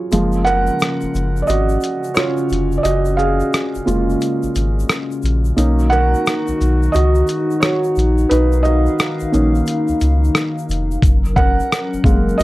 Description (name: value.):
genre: lo-fi hip hop.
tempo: 88 BPM.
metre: 4/4.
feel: swing 64% on 16ths.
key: F# major.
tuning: A4 = 439 Hz.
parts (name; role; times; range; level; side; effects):
felt-muted upright piano; accompaniment; 0.0-12.4 s; E#3 to F#5; -18 LUFS; right 2 dB; cassette tape, low-pass filter, plate reverb.
hollow soft pad; sustained chords; 0.2-12.4 s; C#3 to E#5; -22 LUFS; left 2 dB; chorus, low-pass filter, plate reverb.
soft dub sub bass; bass; 0.1-12.4 s; E#1 to C#2; -17 LUFS; equal; none.
dusty soul sampler-style drum kit; drums; 0.1-12.4 s; hi-hat, kick drum, rim click, shaker; -17 LUFS; equal; none.
egg shaker; percussion; 0.1-12.4 s; none; -40 LUFS; left 10 dB; none.
room: light reverb.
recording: dark, warm production.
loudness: -14 LUFS.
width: side -17 dB against mid.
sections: 0.1-12.4 A section.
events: kick muted 0.1-11.0; felt piano solo 0.1-12.4.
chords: 0.1 F#maj7; 5.6 Bmaj7; 11.0 F#maj7.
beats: | 0.12 0.80 1.48 2.16 | 2.84 3.52 4.21 4.89 | 5.57 6.25 6.93 7.62 | 8.30 8.98 9.66 10.34 | 11.02 11.71 12.39.